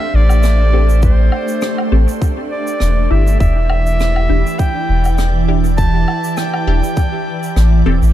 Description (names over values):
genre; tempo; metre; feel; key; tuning
ambient dub; 101 BPM; 4/4; swing 54% on 16ths; A minor; A4 = 441 Hz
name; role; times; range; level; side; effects
bright clarinet; melody; 0.0-7.9 s; C5 to A5; -22 LUFS; equal; dub echo
soft additive organ-like pad; sustained chords; 0.0-8.1 s; E3 to D5; -20 LUFS; right 4 dB; ensemble chorus, built-in reverb
soft dub sub bass; bass; 0.1-8.1 s; E1 to A1; -12 LUFS; equal; tube saturation
woodblock, shaker and rim click; drums; 0.3-8.1 s; none; -27 LUFS; left 1 dB; dub echo
filtered dub chord stab; stabs; 0.7-8.1 s; C4 to A4; -26 LUFS; left 5 dB; phaser, dub echo
electronic kick drum; drums; 1.0-7.1 s; none; -16 LUFS; equal; none
room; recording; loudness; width
small room ambience; none; -12 LUFS; side -12 dB against mid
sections
0.0-8.1 A section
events
none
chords
0.0 Am7